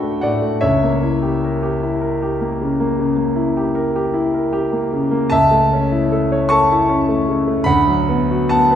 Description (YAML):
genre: classical, romantic nocturne for solo piano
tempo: 51 BPM (dotted quarters)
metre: 12/8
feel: rubato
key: A major from 5.3 s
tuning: A4 = 439 Hz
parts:
  - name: clear concert grand piano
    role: solo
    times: 0.0-8.8 s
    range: C#2 to C#6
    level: -15 LUFS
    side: equal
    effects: none
room: moderate scoring stage reverb, RT60 1.9 s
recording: heard from further back in the room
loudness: -15 LUFS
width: side -9 dB against mid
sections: 0.0-8.8 A section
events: none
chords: 0.0 D; 0.6 C#dim7; 5.3 A/C#; 7.7 Bm/D